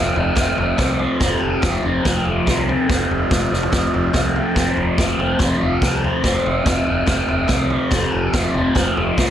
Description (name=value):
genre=garage rock duo or trio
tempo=143 BPM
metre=4/4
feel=straight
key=F major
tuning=A4 = 440 Hz
part: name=crunchy overdriven guitar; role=riff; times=0.0-9.3 s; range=F2 to C4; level=-18 LUFS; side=equal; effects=phaser
part: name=growling fingered electric bass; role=bass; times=0.0-9.3 s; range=F1 to C2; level=-25 LUFS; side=equal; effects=overdrive
part: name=vintage drum kit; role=drums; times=0.2-9.3 s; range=kick drum, snare drum, toms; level=-21 LUFS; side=equal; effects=none
room=light reverb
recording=none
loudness=-16 LUFS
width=side -10 dB against mid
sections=0.0-9.3 A section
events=drum fill 3.5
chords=0.0 F